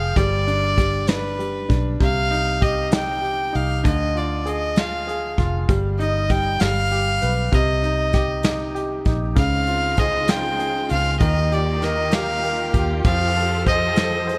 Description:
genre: six-eight pop ballad.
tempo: 65 BPM (dotted quarters).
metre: 6/8.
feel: straight.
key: C minor.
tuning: A4 = 440 Hz.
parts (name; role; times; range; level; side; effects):
warm violin; melody; 0.0-14.4 s; B4 to G5; -25 LUFS; equal; none.
clear concert grand piano; accompaniment; 0.0-14.4 s; C3 to C5; -28 LUFS; equal; none.
vintage muted fingered electric bass; bass; 0.0-14.4 s; F1 to F2; -27 LUFS; equal; none.
soft brush drum kit; drums; 0.2-14.4 s; hi-hat, kick drum, snare drum; -24 LUFS; equal; none.
warm studio string section; sustained chords; 9.4-14.4 s; Db3 to C5; -31 LUFS; equal; none.
room: light reverb, studio reverb.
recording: bright 1980s-style digital production.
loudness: -21 LUFS.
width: mono.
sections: 0.0-14.4 A section.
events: none.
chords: 0.2 G; 2.0 Cm; 3.8 Ddim; 5.7 Eb/G; 6.6 G; 7.5 Cm7; 9.4 Dbmaj7; 11.2 Eb; 13.0 Fadd9.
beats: | 0.16 1.08 | 2.00 2.92 | 3.84 4.76 | 5.68 6.60 | 7.52 8.44 | 9.36 10.28 | 11.20 12.12 | 13.04 13.96.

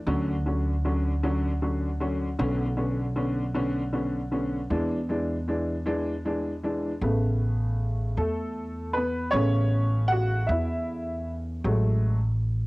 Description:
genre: six-eight pop ballad.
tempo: 52 BPM (dotted quarters).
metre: 6/8.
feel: straight.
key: A major.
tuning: A4 = 440 Hz.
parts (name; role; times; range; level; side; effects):
upright bass; bass; 0.0-12.7 s; A1 to E2; -27 LUFS; equal; none.
clear upright piano; accompaniment; 0.1-12.2 s; C#3 to F#5; -28 LUFS; equal; cassette tape.
room: light reverb, studio ambience.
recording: home recording on cassette.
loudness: -24 LUFS.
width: side -22 dB against mid.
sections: 0.0-7.0 A section; 7.0-12.7 B section.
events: upright piano solo 7.0-12.7.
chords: 0.1 Dmaj7; 2.4 Bmadd9; 4.7 E7; 7.0 Aadd9; 11.6 F#madd9/A.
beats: | 0.07 1.23 | 2.39 3.55 | 4.71 5.86 | 7.02 8.18 | 9.33 10.49 | 11.64.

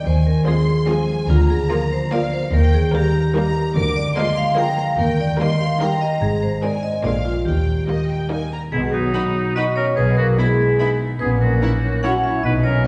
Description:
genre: cinematic, playful, whimsical film cue.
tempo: 146 BPM.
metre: 3/4.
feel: straight.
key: Eb major, B major from 8.7 s.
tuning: A4 = 440 Hz.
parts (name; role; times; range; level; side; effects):
rich studio violin section; melody; 0.0-12.1 s; Eb5 to D6; -32 LUFS; equal; none.
vibraphone with medium hard mallets; melody; 0.0-12.9 s; F4 to G5; -25 LUFS; equal; none.
concert harp; arpeggios; 0.0-12.9 s; Ab2 to Eb5; -26 LUFS; equal; none.
warm studio cello section; bass; 0.0-12.8 s; D2 to B2; -26 LUFS; equal; none.
clear studio double bass section; bass; 0.1-12.8 s; Ab1 to Eb2; -26 LUFS; equal; none.
warm studio violin section; second line; 0.5-12.1 s; Bb3 to Bb4; -34 LUFS; equal; none.
rich studio viola section; accompaniment; 0.5-12.1 s; D3 to D#4; -31 LUFS; equal; none.
clear oboe; second line; 8.7-12.8 s; D#4 to C#5; -28 LUFS; equal; none.
warm clarinet; second line; 8.7-12.9 s; B3 to G#4; -31 LUFS; equal; none.
mellow French horn section; sustained chords; 8.7-12.9 s; F#3 to F#4; -28 LUFS; equal; none.
room: wet scoring stage reverb, RT60 1.8 s.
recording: heard from further back in the room, nothing above 10.7 kHz.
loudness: -19 LUFS.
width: mono.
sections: 0.0-8.7 A section; 8.7-12.9 B section.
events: none.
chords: 0.1 Fm7/Eb; 1.3 Bb/D; 2.5 Eb; 3.8 Bb7/D; 5.0 Eb; 6.2 Ab; 7.0 Bb7; 7.5 Eb; 8.7 B; 10.0 E/B; 11.2 F#7/A#.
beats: | 0.05 0.47 0.88 | 1.29 1.70 2.12 | 2.53 2.94 3.35 | 3.76 4.17 4.58 | 4.99 5.40 5.81 | 6.22 6.63 7.05 | 7.47 7.89 8.31 | 8.73 9.14 9.56 | 9.97 10.38 10.79 | 11.20 11.62 12.03 | 12.44 12.85.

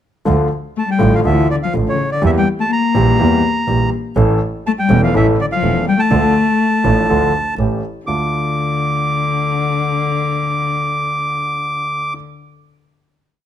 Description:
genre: tango.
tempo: 123 BPM.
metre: 4/4.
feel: rubato.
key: D harmonic minor.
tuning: A4 = 439 Hz.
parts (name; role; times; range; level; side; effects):
warm concert grand piano; accompaniment; 0.3-12.2 s; E1 to A4; -18 LUFS; equal; none.
clear double bass; bass; 0.3-8.3 s; E1 to E2; -18 LUFS; right 3 dB; none.
bandoneon; melody; 0.8-12.1 s; C#5 to D6; -19 LUFS; right 2 dB; none.
warm cello; second line; 0.8-12.1 s; C#3 to Bb3; -19 LUFS; left 6 dB; none.
room: light reverb.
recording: close, detailed microphones.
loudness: -14 LUFS.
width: side -10 dB against mid.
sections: 0.3-8.1 A section; 8.1-12.0 final chord.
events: none.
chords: 0.3 Dm; 2.2 Edim; 4.2 A; 6.1 Dm; 7.6 A7; 8.1 Dm.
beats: | 0.27 0.76 1.25 1.74 | 2.23 2.71 3.20 3.69 | 4.17 4.66 5.15 5.63 | 6.12 6.61 7.10 7.59 | 8.08 8.57 9.05 9.54 | 10.03 10.51 11.00 11.49.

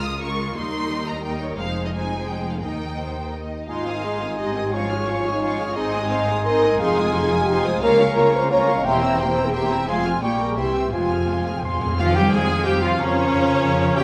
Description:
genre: classical, dramatic, fast romantic movement for symphony orchestra.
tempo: 175 BPM.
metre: 3/4.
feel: straight.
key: Ab major, F minor from 7.8 s.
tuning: A4 = 440 Hz.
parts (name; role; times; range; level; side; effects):
rich studio violin section; melody; 0.0-14.0 s; Bb4 to Eb6; -34 LUFS; equal; none.
warm symphonic violin section; second line; 0.0-14.0 s; Ab4 to F6; -32 LUFS; equal; none.
rich symphonic viola section; accompaniment; 0.0-14.0 s; Eb3 to Bb4; -29 LUFS; equal; none.
rich symphonic double bass section; bass; 0.0-14.0 s; E1 to F2; -31 LUFS; equal; none.
warm symphonic cello section; bass; 0.0-14.0 s; Db2 to Ab3; -31 LUFS; equal; none.
dark clarinet; second line; 3.7-14.0 s; C5 to C6; -31 LUFS; equal; none.
mellow concert flute; second line; 3.7-14.0 s; G5 to Db6; -32 LUFS; equal; none.
clear bassoon; accompaniment; 3.7-14.0 s; E3 to Eb4; -32 LUFS; equal; none.
mellow French horn section; sustained chords; 3.7-14.0 s; F3 to E5; -25 LUFS; equal; none.
cymbal swell and tam-tam; percussion; 9.9-13.3 s; none; -35 LUFS; equal; none.
timpani; percussion; 10.9-12.5 s; F2; -32 LUFS; equal; none.
room: wet concert hall reverb, RT60 1.8 s.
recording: none.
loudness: -21 LUFS.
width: mono.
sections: 0.0-3.7 A section; 3.7-12.0 A section; 12.0-14.0 B section.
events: timpani fill 10.9-12.0; band accent 12.0-12.3.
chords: 0.0 Bbm7/Db; 0.6 Eb; 1.6 Fm7; 2.6 Eb; 3.7 Ab; 4.7 Db/Ab; 5.8 Ab; 6.8 Fm7; 7.8 Bbm/Db; 8.9 C7/E; 9.9 Fm; 10.2 Gdim/Bb; 10.6 C; 10.9 Fm; 13.0 Bbm/F.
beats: 0.21 | 0.56 0.90 1.24 | 1.58 1.93 2.28 | 2.63 2.99 3.34 | 3.69 4.04 4.39 | 4.73 5.08 5.42 | 5.77 6.11 6.46 | 6.80 7.14 7.48 | 7.83 8.17 8.51 | 8.85 9.19 9.54 | 9.88 10.23 10.58 | 10.93 11.29 11.65 | 12.00 12.33 12.66 | 12.99 13.32 13.65 | 13.98.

